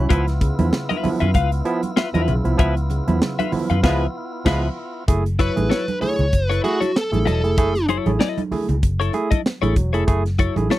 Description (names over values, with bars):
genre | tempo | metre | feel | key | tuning
funk | 96 BPM | 4/4 | swing 56% on 16ths | unclear | A4 = 440 Hz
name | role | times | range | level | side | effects
tonewheel organ | sustained chords | 0.0-5.0 s | B3 to E#4 | -31 LUFS | equal | overdrive, lush chorus
barky tine electric piano | stabs | 0.0-10.8 s | C#3 to G#4 | -24 LUFS | right 3 dB | overdrive
vintage muted fingered electric bass | bass | 0.0-10.7 s | E1 to F#2 | -21 LUFS | equal | none
clean electric guitar | accompaniment | 0.1-10.8 s | E4 to E#5 | -23 LUFS | left 7 dB | analog chorus
crisp fusion drum kit | drums | 0.1-10.8 s | crash cymbal, hi-hat, kick drum, snare drum | -19 LUFS | equal | none
congas | percussion | 0.1-10.8 s | none | -27 LUFS | right 5 dB | none
warm horn section | second line | 3.8-4.6 s | G#3 to B4 | -26 LUFS | equal | none
smooth overdriven lead guitar | melody | 5.4-7.9 s | F#4 to C#5 | -22 LUFS | equal | none
room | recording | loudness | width
little or no reverb | dry, close 1970s-style studio recording | -18 LUFS | side -15 dB against mid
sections
0.0-5.1 A section; 5.1-10.8 B section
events
band accent 2.6-5.1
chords
0.1 C#7#9; 5.1 F#m7